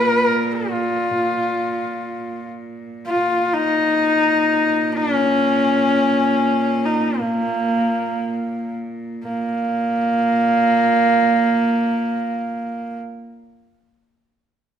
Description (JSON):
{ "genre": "mongolian traditional, Mongolian folk", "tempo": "free time", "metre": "none", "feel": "none", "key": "Bb yu mode", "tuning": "A4 = 440 Hz", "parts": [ { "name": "bright horsehead fiddle", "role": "melody", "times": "0.0-13.0 s", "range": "Bb3 to Bb4", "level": "-18 LUFS", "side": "equal", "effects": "none" }, { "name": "dark cello", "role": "drone", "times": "0.0-13.0 s", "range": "Bb2", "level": "-25 LUFS", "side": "right 2 dB", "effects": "none" } ], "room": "wet recital hall reverb, RT60 1.4 s", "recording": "none", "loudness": "-17 LUFS", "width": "side -8 dB against mid", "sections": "0.0-9.3 A section; 9.3-12.9 B section", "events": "slowing down 3.2-9.3", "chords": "none" }